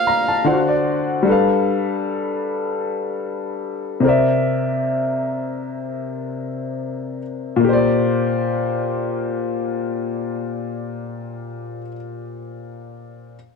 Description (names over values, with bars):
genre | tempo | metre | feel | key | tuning
R&B | free time | none | none | Bb lydian | A4 = 441 Hz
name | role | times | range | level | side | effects
breathy tenor saxophone | melody | 0.0-0.8 s | F5 | -21 LUFS | right 4 dB | tape echo
warm upright piano | accompaniment | 0.0-13.4 s | Bb2 to Bb5 | -19 LUFS | left 2 dB | none
room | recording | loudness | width
moderate studio reverb, RT60 0.7 s | dark, warm production | -18 LUFS | side -5 dB against mid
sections
0.0-7.6 A section; 7.6-10.8 B section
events
upright piano fill 0.0-1.2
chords
0.4 D7; 1.2 G7; 4.0 C9; 7.6 Bb6